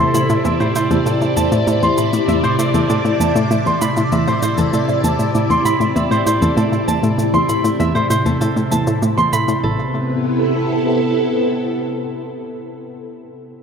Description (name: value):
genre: ambient, sequencer-driven space music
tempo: 98 BPM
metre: 4/4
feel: straight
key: A minor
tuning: A4 = 442 Hz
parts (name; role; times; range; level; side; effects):
- phased string machine; sustained chords; 0.0-12.8 s; C3 to D5; -18 LUFS; equal; ensemble chorus, phaser
- concert harp; arpeggios; 0.0-11.8 s; A4 to C6; -21 LUFS; right 2 dB; auto-pan, analog delay
- analog pluck; riff; 0.0-9.9 s; A1 to A2; -19 LUFS; equal; chorus, analog delay
- electronic cabasa and toms; percussion; 0.1-9.6 s; none; -26 LUFS; left 3 dB; analog delay
room: wet cathedral reverb, RT60 5.5 s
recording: in a vast, echoing space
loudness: -14 LUFS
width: side -6 dB against mid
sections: 0.0-9.6 A section; 9.6-12.1 B section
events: filter sweep on synth arpeggio sound 0.0-9.6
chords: 0.0 Amadd9